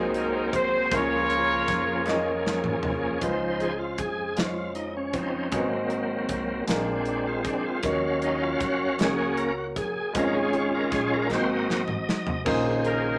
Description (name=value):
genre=slow gospel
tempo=52 BPM (dotted quarters)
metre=6/8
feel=straight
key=Db major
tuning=A4 = 439 Hz
part: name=warm horn section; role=melody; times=0.0-2.5, 12.9-13.2 s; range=C4 to Db5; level=-27 LUFS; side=equal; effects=none
part: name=warm concert grand piano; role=accompaniment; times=0.0-13.2 s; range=Ab2 to Eb5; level=-32 LUFS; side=equal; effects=none
part: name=bright tonewheel organ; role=sustained chords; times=0.0-13.2 s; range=Db3 to F5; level=-30 LUFS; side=equal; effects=overdrive, chorus vibrato, fast rotary speaker
part: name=upright bass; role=bass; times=0.0-13.2 s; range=Ab1 to Gb2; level=-39 LUFS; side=equal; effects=none
part: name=modern studio drum kit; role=drums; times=0.1-13.0 s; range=crash cymbal, hi-hat, kick drum, snare drum, toms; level=-34 LUFS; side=equal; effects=none
part: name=group handclap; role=percussion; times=2.1-2.4, 9.0-11.7 s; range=none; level=-44 LUFS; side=equal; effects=none
room=wet studio reverb, RT60 0.8 s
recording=none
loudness=-26 LUFS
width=mono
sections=0.0-3.2 A section; 3.2-12.5 B section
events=drum fill 2.1-3.2, 11.3-12.5; tonewheel organ solo 3.2-12.5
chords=0.0 Ab13; 0.9 Db6; 3.2 Dbmaj7; 5.5 Ab7; 6.7 Bb7; 7.8 Ebm7; 9.0 Gb/Db; 10.1 Db/Ab; 11.3 Ab7; 12.5 Bbm11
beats=| 0.92 2.07 | 3.22 4.38 | 5.53 6.68 | 7.84 8.99 | 10.15 11.30 | 12.46